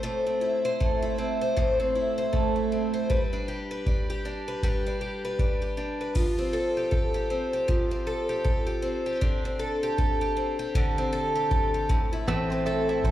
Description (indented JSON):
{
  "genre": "acoustic pop",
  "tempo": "78 BPM",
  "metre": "4/4",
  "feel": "swing 60% on 16ths",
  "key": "unclear",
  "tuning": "A4 = 439 Hz",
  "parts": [
    { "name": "picked twelve-string acoustic guitar", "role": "accompaniment", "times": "0.0-13.1 s", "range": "A2 to C5", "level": "-26 LUFS", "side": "equal", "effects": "slapback echo" },
    { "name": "booming analog drum machine", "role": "drums", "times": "0.8-13.1 s", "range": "crash cymbal, kick drum", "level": "-28 LUFS", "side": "equal", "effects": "none" },
    { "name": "direct-recorded clean electric guitar", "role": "second line", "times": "12.3-13.1 s", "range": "C4", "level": "-30 LUFS", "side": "left 3 dB", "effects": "slapback echo" },
    { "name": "mandolin", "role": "arpeggios", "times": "12.3-13.1 s", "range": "A3 to E5", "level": "-31 LUFS", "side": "right 7 dB", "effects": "none" },
    { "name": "vintage muted fingered electric bass", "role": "bass", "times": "12.3-13.1 s", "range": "A1", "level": "-30 LUFS", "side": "equal", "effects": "none" }
  ],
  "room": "light reverb",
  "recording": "live gig heard through the venue's PA, club reverb",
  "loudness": "-24 LUFS",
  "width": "side -13 dB against mid",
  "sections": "0.0-6.2 A section; 6.2-13.1 B section",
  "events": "none",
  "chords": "0.0 Am; 3.1 G; 6.2 Fadd9; 9.2 D7sus4; 11.9 Am"
}